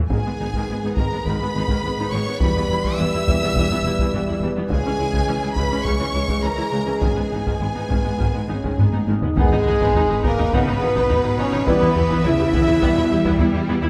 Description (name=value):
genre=cinematic, epic orchestral film score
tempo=104 BPM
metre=4/4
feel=straight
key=G# harmonic minor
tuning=A4 = 440 Hz
part: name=clear symphonic viola section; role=accompaniment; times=0.0-13.9 s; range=C#3 to G#4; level=-31 LUFS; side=equal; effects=none
part: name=rich symphonic violin section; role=melody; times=0.1-13.9 s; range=B4 to E6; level=-32 LUFS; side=equal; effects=none
part: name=warm studio violin section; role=second line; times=0.1-13.7 s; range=G#4 to E5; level=-32 LUFS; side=equal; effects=none
part: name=clear French horn section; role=sustained chords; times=0.1-13.7 s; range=G#3 to B4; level=-26 LUFS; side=equal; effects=none
part: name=warm trombone section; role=sustained chords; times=0.1-13.0 s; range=D#3 to B3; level=-30 LUFS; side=equal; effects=none
part: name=clear symphonic double bass section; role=bass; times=0.1-13.9 s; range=E1 to E2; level=-28 LUFS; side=equal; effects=none
part: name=rich studio cello section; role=bass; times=0.1-13.9 s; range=C#2 to G3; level=-29 LUFS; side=equal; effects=none
part: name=taiko ensemble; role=drums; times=0.1-13.8 s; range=none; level=-26 LUFS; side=equal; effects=none
part: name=sub drop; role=sound effects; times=9.4-11.7 s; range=none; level=-32 LUFS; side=equal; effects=none
room=moderate scoring stage reverb, RT60 1.5 s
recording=none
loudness=-20 LUFS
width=mono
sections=0.0-9.4 A section; 9.4-13.9 B section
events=drum fill 8.8-9.4; impact 9.4-11.7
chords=0.1 G#m; 2.4 Em; 4.7 C#m; 7.0 G#m; 11.7 Em